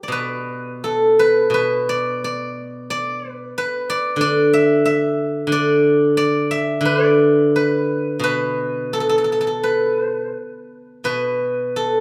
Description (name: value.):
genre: chinese traditional, Chinese solo plucked strings.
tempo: 81-93 BPM.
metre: 4/4.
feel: rubato.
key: unclear.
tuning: A4 = 440 Hz.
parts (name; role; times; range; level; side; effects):
steel-string zither; solo; 0.0-12.0 s; B2 to E5; -19 LUFS; equal; none.
room: moderate recital hall reverb, RT60 1.7 s.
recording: none.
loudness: -19 LUFS.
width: mono.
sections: 0.1-12.0 A section.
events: none.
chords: none.